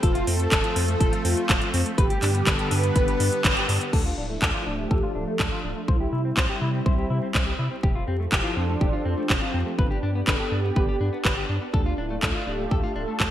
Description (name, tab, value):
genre	italo disco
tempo	123 BPM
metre	4/4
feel	straight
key	unclear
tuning	A4 = 440 Hz
part	mellow synth brass	melody	0.0-13.3 s	C4 to B4	-30 LUFS	right 1 dB	chorus, digital delay
part	lush unison pad	sustained chords	0.0-13.3 s	D3 to C5	-31 LUFS	equal	chorus, phaser
part	direct-recorded clean electric guitar	arpeggios	0.0-13.3 s	A3 to C5	-32 LUFS	left 2 dB	lush chorus, low-pass filter, digital delay
part	round analog bass	bass	0.0-13.3 s	D1 to C3	-27 LUFS	equal	none
part	electronic kick drum	drums	0.0-13.3 s	none	-24 LUFS	equal	none
part	house drum kit	drums	0.0-13.3 s	crash cymbal, handclaps, hi-hat	-27 LUFS	equal	gated reverb
room	moderate lush hall reverb, RT60 1.9 s, digital ambience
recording	bright 1980s-style digital production, vinyl crackle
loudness	-21 LUFS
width	side -12 dB against mid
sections	0.0-3.9 A section; 3.9-13.3 B section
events	band accent 3.4; filter sweep on clean electric guitar 3.9-13.3; filter sweep on analog synth pad 3.9-13.3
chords	0.0 F; 2.0 G; 3.9 Dm; 5.9 C; 7.8 Fadd9; 9.8 G; 11.7 Dm